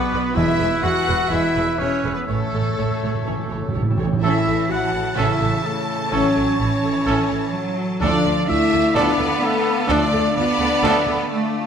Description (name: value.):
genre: cinematic, heroic adventure film score.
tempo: 127 BPM.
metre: 4/4.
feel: straight.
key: A major.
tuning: A4 = 442 Hz.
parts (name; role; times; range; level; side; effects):
warm studio violin section; melody; 0.0-11.7 s; A4 to A5; -30 LUFS; left 4 dB; none.
clear clarinet; second line; 0.0-3.9 s; B4 to C#5; -32 LUFS; left 2 dB; none.
mellow hollow silver concert flute; second line; 0.0-11.5 s; A4 to F#5; -29 LUFS; left 2 dB; none.
rich symphonic violin section; second line; 0.0-11.5 s; A4 to F#5; -31 LUFS; left 2 dB; none.
warm oboe; second line; 0.0-11.5 s; A4 to F#5; -28 LUFS; right 2 dB; none.
dark French horn section; sustained chords; 0.0-11.5 s; A3 to F#4; -23 LUFS; left 2 dB; none.
concert harp; arpeggios; 0.0-11.7 s; A2 to A5; -31 LUFS; left 7 dB; none.
warm trumpet; stabs; 0.0-11.0 s; A3 to A4; -27 LUFS; right 2 dB; none.
rich symphonic viola section; accompaniment; 0.1-11.2 s; C#4 to D5; -30 LUFS; right 1 dB; none.
rich symphonic cello section; bass; 0.1-11.7 s; E2 to B3; -25 LUFS; right 2 dB; none.
rich symphonic double bass section; bass; 0.1-11.1 s; E1 to D2; -26 LUFS; right 4 dB; none.
dark trombone section; sustained chords; 0.3-11.0 s; A2 to C#4; -33 LUFS; right 4 dB; none.
timpani; percussion; 0.4-4.2 s; E2 to A2; -25 LUFS; right 3 dB; none.
room: wet scoring stage reverb, RT60 2.0 s.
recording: none.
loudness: -17 LUFS.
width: side -7 dB against mid.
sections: 0.0-4.2 A section; 4.2-11.7 B section.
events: timpani fill 2.3-4.2.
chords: 0.4 E; 2.3 A; 8.0 Dm.